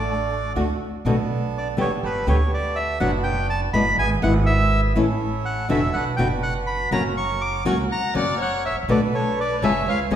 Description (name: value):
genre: tango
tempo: 123 BPM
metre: 4/4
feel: rubato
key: B minor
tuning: A4 = 438 Hz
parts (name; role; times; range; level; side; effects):
- bandoneon; melody; 0.0-10.2 s; B4 to D6; -25 LUFS; equal; none
- dark violin; second line; 0.0-0.5, 7.9-10.2 s; A4 to F#5; -28 LUFS; left 4 dB; none
- bandoneon; stabs; 0.0-10.2 s; A3 to B4; -29 LUFS; right 5 dB; none
- upright bass; bass; 0.0-10.2 s; E1 to D2; -25 LUFS; right 1 dB; none
- nylon-string guitar; accompaniment; 0.6-10.2 s; B2 to G#4; -24 LUFS; left 2 dB; none
room: wet recital hall reverb, RT60 1.4 s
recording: recorded in a church or concert hall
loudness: -19 LUFS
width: side -10 dB against mid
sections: 0.0-1.1 A section; 1.1-10.2 B section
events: none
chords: 0.0 D; 1.1 Bm7; 2.0 Gadd9; 3.0 Bm/F#; 4.0 E/G#; 5.0 A; 5.9 Bm; 6.9 F#; 8.9 Bm7